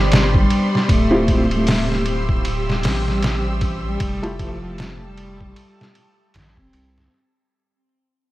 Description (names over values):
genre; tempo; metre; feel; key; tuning
trip hop; 77 BPM; 4/4; swing 59% on 16ths; unclear; A4 = 442 Hz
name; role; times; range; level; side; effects
felt-muted upright piano; accompaniment; 0.0-7.1 s; A3 to G4; -25 LUFS; equal; tremolo, tape echo
string machine, cellos; sustained chords; 0.0-7.1 s; G4 to E6; -26 LUFS; equal; ensemble chorus
round analog bass; bass; 0.0-7.1 s; D1 to C2; -24 LUFS; equal; none
trip hop sampler-style drum kit; drums; 0.1-7.1 s; hi-hat, kick drum, ride cymbal, snare drum; -20 LUFS; equal; none
dark cello; melody; 0.4-7.1 s; F3 to C4; -24 LUFS; equal; tape echo
room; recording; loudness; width
digital ambience; vinyl crackle; -16 LUFS; side -16 dB against mid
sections
0.0-7.1 A section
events
fade-out 0.0-7.1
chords
0.0 Cmaj7sus2; 0.9 Dm11; 4.0 Fmaj9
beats
0.11 | 0.89 1.67 2.45 3.23 | 4.01 4.79 5.57 6.35